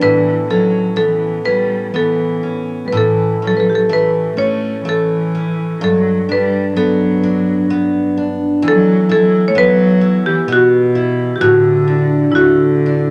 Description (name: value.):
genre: celtic folk, Celtic slow air.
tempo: 63 BPM.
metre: 3/4.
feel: uneven beats, rubato.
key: unclear.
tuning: A4 = 439 Hz.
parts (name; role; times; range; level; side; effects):
marimba with hard mallets; melody; 0.0-13.1 s; E4 to C#5; -17 LUFS; equal; none.
warm cello; second line; 0.0-13.1 s; B2 to A3; -20 LUFS; equal; none.
picked steel-string acoustic guitar; accompaniment; 0.0-13.1 s; G2 to E4; -21 LUFS; equal; none.
room: moderate large studio reverb, RT60 1.1 s.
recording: none.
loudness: -14 LUFS.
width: mono.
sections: 0.0-13.1 A section.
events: none.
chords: 0.0 Aadd9; 2.9 A; 5.8 Gmaj7; 8.6 Esus2; 11.4 Asus4.